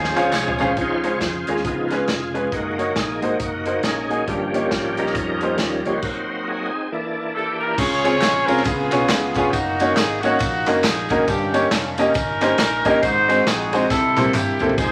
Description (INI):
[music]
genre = uptempo gospel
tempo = 137 BPM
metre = 4/4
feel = swing 60% on 8ths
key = Db major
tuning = A4 = 440 Hz
[part]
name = warm horn section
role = melody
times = 0.0-0.7, 7.3-14.9 s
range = Bb3 to Db5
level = -24 LUFS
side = equal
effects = none
[part]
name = bright tonewheel organ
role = sustained chords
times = 0.0-7.8, 14.8-14.9 s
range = E3 to Db5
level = -26 LUFS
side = equal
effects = fast rotary speaker, overdrive, chorus vibrato
[part]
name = fingered electric bass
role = bass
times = 0.0-14.9 s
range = F1 to G2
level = -36 LUFS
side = equal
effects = none
[part]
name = natural country drum kit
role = drums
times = 0.0-14.9 s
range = crash cymbal, hi-hat, kick drum, ride cymbal, snare drum, toms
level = -28 LUFS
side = equal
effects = none
[part]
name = bright upright piano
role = accompaniment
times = 0.2-14.7 s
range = G2 to F5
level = -24 LUFS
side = equal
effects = none
[part]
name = handclaps and tambourine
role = percussion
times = 0.2-0.7, 7.8-14.9 s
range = none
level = -33 LUFS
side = equal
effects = none
[sound]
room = moderate large studio reverb, RT60 1.2 s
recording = vinyl crackle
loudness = -20 LUFS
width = mono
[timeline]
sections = 0.8-7.8 A section; 7.8-14.9 B section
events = drum fill 0.0-0.8, 13.9-14.8; tonewheel organ solo 0.8-7.8; stop 6.0-7.8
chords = 0.0 Dbmaj7; 1.6 Db7; 2.5 Gb6; 4.3 Eb7/G; 6.0 Ab7; 6.9 Gm69/E; 7.8 Dbmaj7; 8.7 Db7; 9.5 Gb6; 11.3 Eb7; 13.0 Ab7; 13.9 C7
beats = 0.34 | 0.77 1.21 1.65 2.08 | 2.52 2.96 3.40 3.84 | 4.28 4.72 5.16 5.59 | 6.03 6.47 6.91 7.35 | 7.78 8.22 8.66 9.09 | 9.53 9.97 10.40 10.84 | 11.28 11.71 12.15 12.59 | 13.03 13.47 13.90 14.34 | 14.78